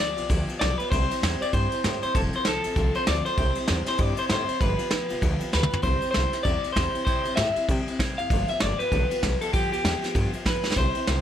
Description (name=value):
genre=rockabilly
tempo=195 BPM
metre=4/4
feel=swing 60% on 8ths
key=C major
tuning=A4 = 441 Hz
part: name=electric guitar through a small old amp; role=melody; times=0.0-11.2 s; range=G4 to F5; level=-27 LUFS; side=left 1 dB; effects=plate reverb, analog delay
part: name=picked steel-string acoustic guitar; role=accompaniment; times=0.0-11.2 s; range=G2 to A4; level=-32 LUFS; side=left 2 dB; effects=plate reverb
part: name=upright bass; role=bass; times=0.0-11.2 s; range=F1 to C3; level=-29 LUFS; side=equal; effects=none
part: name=vintage brush drum kit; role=drums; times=0.2-11.2 s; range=kick drum, ride cymbal, snare drum, toms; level=-26 LUFS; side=equal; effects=none
room=light reverb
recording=none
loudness=-22 LUFS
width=side -10 dB against mid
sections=0.0-5.8 A section; 5.8-11.2 B section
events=drum fill 5.5-5.8, 10.6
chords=0.0 G7; 0.9 C; 2.1 F; 3.4 C; 4.6 G7; 5.8 C; 8.3 G7